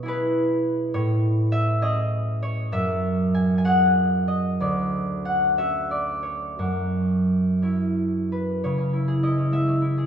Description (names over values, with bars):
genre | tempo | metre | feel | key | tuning
classical, solo harp piece | 57-70 BPM (dotted quarters) | 6/8 | rubato | F# minor | A4 = 438 Hz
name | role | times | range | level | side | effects
concert harp | solo | 0.0-10.1 s | D2 to G#5 | -21 LUFS | equal | none
room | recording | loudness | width
wet recital hall reverb, RT60 1.7 s | recorded in a church or concert hall | -21 LUFS | side -8 dB against mid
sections
0.0-8.6 A section; 8.6-10.1 B section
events
none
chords
0.0 C#m7/B; 0.9 Amaj7; 2.7 F#sus2; 4.6 Dmaj7; 6.6 F#5; 8.6 C#madd9